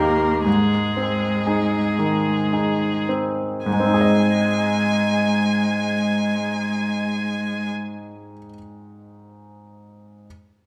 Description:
classical, slow romantic movement for piano trio; 52-64 BPM; 3/4; rubato; Ab major; A4 = 440 Hz
rich violin; melody; 0.0-7.7 s; Ab4 to Ab5; -29 LUFS; equal
rich cello; second line; 0.0-7.7 s; Ab3 to Bb3; -25 LUFS; equal
bright baby grand piano; accompaniment; 0.0-10.3 s; Eb2 to Eb5; -25 LUFS; equal
wet recital hall reverb, RT60 1.4 s; -21 LUFS; mono
0.0-3.7 A section; 3.7-6.9 B section
slowing down 0.0-3.7
0.5 Ab

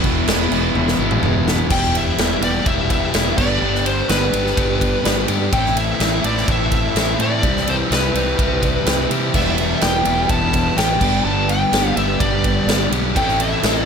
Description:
classic rock; 126 BPM; 4/4; straight; A4 = 441 Hz
picked acoustic archtop guitar; accompaniment; 0.0-13.9 s; E2 to A4; -27 LUFS; right 8 dB
cranked stack guitar; riff; 0.0-13.9 s; E2 to A4; -26 LUFS; right 12 dB; overdrive
crunchy overdriven guitar; riff; 0.0-13.9 s; E2 to A4; -23 LUFS; left 14 dB
overdriven semi-hollow guitar; riff; 0.0-1.7, 9.3-13.9 s; E2 to A3; -25 LUFS; equal
fuzz fingered electric bass; bass; 0.0-13.8 s; E1 to C3; -23 LUFS; equal; overdrive
big rock drum kit; drums; 0.0-13.8 s; crash cymbal, kick drum, ride cymbal, snare drum, toms; -20 LUFS; right 1 dB
smooth overdriven lead guitar; melody; 1.7-13.9 s; B4 to A5; -22 LUFS; left 1 dB
studio ambience; -15 LUFS; side -6 dB against mid
0.0-1.7 A section; 1.7-13.9 B section
drum fill 0.8-1.7
0.0 E; 1.7 Em; 3.4 G; 5.5 Am; 7.4 C; 9.3 Em; 11.0 G; 13.2 Am

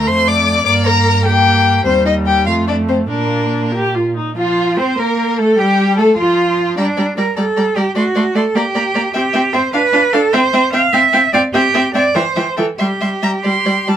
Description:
quick classical-period movement for string quartet; 92-103 BPM (dotted quarters); 6/8; rubato; Bb major, C major from 9.1 s; A4 = 439 Hz
rich violin; melody; 0.0-14.0 s; F4 to D6; -18 LUFS; left 4 dB
rich violin; second line; 0.0-14.0 s; Bb3 to F5; -20 LUFS; left 3 dB
rich viola; accompaniment; 0.0-14.0 s; E3 to G4; -17 LUFS; right 1 dB
rich cello; bass; 0.0-13.8 s; Eb2 to F5; -16 LUFS; right 3 dB
light reverb; close, detailed microphones; -12 LUFS; side -10 dB against mid
0.0-4.4 A section; 4.4-14.0 B section
0.0 Dm; 0.7 Gm; 1.9 Eb6; 2.5 F; 3.1 Bb; 4.4 Bb5/F; 5.6 Gsus2; 6.2 N.C.; 6.8 Gm; 8.0 D7; 8.6 Gm; 9.1 C; 9.7 Bdim/D; 10.3 C; 10.9 G5/C; 11.5 C; 12.1 C/E; 12.8 C/G

